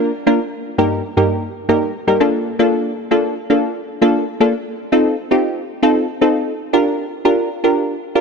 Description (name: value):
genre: pop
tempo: 116 BPM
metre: 4/4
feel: straight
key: Bb major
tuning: A4 = 435 Hz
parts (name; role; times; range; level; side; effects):
- wavetable chord stab; solo; 0.0-8.2 s; G2 to Bb4; -15 LUFS; equal; none
room: moderate lush hall reverb, RT60 2.9 s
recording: none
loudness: -15 LUFS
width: side -5 dB against mid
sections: 0.0-8.2 A section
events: none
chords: 0.4 Eb/G; 2.2 Bbmaj7; 4.5 F7; 6.6 Gm7